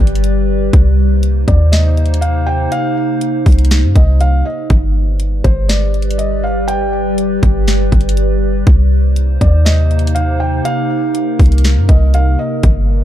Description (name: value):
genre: hip hop, atmospheric cloud-rap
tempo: 121 BPM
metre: 4/4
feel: half-time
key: C minor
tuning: A4 = 442 Hz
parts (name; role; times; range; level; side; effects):
- felt-muted upright piano; melody; 0.0-12.6 s; C5 to G5; -22 LUFS; equal; ping-pong delay
- warbly tape-like pad; sustained chords; 0.0-13.0 s; C3 to D5; -18 LUFS; equal; chorus, built-in reverb, sidechain pumping
- clean 808-style bass; bass; 0.0-13.0 s; G1 to G2; -12 LUFS; equal; none
- trap drum kit; drums; 0.1-12.8 s; hi-hat, kick drum, snare drum; -13 LUFS; equal; none
room: digital ambience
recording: dark, warm production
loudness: -10 LUFS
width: side -12 dB against mid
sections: 0.0-12.6 A section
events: none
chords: 0.0 G; 0.7 Cm7; 4.7 G; 8.7 Cm7